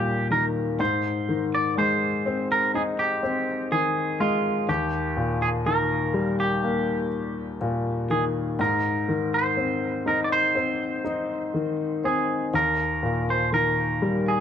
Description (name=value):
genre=pop ballad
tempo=61 BPM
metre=4/4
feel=straight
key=unclear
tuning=A4 = 440 Hz
part: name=twangy electric guitar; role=melody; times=0.0-14.4 s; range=F4 to D5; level=-25 LUFS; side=right 3 dB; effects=none
part: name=clear baby grand piano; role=accompaniment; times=0.0-14.4 s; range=Eb2 to Eb4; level=-25 LUFS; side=left 3 dB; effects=none
room=moderate recital hall reverb, RT60 1.7 s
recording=none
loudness=-22 LUFS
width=side -8 dB against mid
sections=0.0-14.4 A section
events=none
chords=0.0 Eb; 0.8 Ab; 4.7 Eb; 8.6 Ab; 12.5 Eb